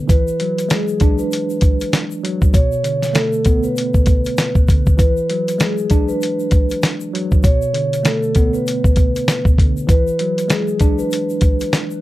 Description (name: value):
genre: hip hop, boom-bap hip-hop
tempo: 98 BPM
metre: 4/4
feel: swing 58% on 16ths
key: unclear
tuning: A4 = 442 Hz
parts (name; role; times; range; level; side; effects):
- tine electric piano; accompaniment; 0.0-12.0 s; B2 to D4; -21 LUFS; right 1 dB; medium stereo tremolo, high-pass filter, low-pass filter
- vibraphone with soft mallets; melody; 0.1-11.7 s; G#4 to C#5; -21 LUFS; equal; high-pass filter, low-pass filter, tape echo
- dusty soul sampler-style drum kit; drums; 0.1-11.9 s; hi-hat, kick drum, snare drum; -14 LUFS; equal; none
- tube shaker; percussion; 0.1-12.0 s; none; -39 LUFS; left 8 dB; none
room: little or no reverb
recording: dark, warm production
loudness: -14 LUFS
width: side -16 dB against mid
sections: 0.0-12.0 A section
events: none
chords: 0.1 E9; 2.5 Bm9; 5.0 E9; 7.4 Bm9; 9.9 E9